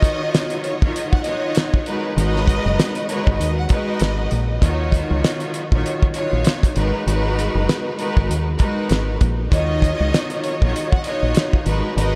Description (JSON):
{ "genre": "hip hop, boom-bap hip-hop", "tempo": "98 BPM", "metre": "4/4", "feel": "swing 58% on 16ths", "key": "Eb minor", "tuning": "A4 = 438 Hz", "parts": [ { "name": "warm studio violin section", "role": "melody", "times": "0.0-4.6, 9.5-12.2 s", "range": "Db5 to Gb5", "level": "-30 LUFS", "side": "equal", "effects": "diffuse ambient delay" }, { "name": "rich studio string section", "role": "accompaniment", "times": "0.0-12.2 s", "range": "Eb3 to Db5", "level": "-26 LUFS", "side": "equal", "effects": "none" }, { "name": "cloth-damped thuddy drum kit", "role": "drums", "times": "0.0-12.1 s", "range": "hi-hat, kick drum, snare drum", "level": "-23 LUFS", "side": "equal", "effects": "none" }, { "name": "deep dub fingered electric bass", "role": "bass", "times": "2.2-12.2 s", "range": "Gb1 to Eb2", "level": "-23 LUFS", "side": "equal", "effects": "none" } ], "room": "moderate huge ambient reverb, RT60 8.6 s", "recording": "dreamy mix soaked in reverb", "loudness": "-20 LUFS", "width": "mono", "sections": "0.0-12.2 A section", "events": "break 0.0-2.2", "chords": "0.0 Ebm7; 1.9 Abm7; 4.6 Ebm7; 6.8 Abm7; 9.5 Ebm7" }